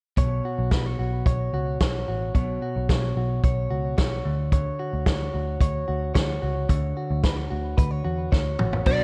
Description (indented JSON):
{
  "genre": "jangly indie pop",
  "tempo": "110 BPM",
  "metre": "4/4",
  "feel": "straight",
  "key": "D major",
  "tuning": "A4 = 439 Hz",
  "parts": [
    { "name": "direct-recorded clean electric guitar", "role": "arpeggios", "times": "0.2-9.0 s", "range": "B2 to C#5", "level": "-31 LUFS", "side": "equal", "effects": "analog delay" },
    { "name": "vintage muted picked electric bass", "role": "bass", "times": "0.2-9.0 s", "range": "A1 to E2", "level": "-30 LUFS", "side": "equal", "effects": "none" },
    { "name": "vintage drum kit", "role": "drums", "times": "0.2-9.0 s", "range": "crash cymbal, hi-hat, kick drum, snare drum, toms", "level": "-25 LUFS", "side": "equal", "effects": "gated reverb" },
    { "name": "fuzz lead guitar", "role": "melody", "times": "8.9-9.0 s", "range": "D5", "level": "-24 LUFS", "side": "equal", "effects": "distortion" },
    { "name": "fingerpicked plugged-in steel-string acoustic guitar", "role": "accompaniment", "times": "8.9-9.0 s", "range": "B2 to F#4", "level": "-30 LUFS", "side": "equal", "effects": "none" }
  ],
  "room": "light reverb, small room ambience",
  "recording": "cassette tape",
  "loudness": "-25 LUFS",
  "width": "mono",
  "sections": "0.2-8.9 A section",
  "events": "drum fill 8.3-8.9",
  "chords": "0.2 Bsus2; 4.2 Dmaj7"
}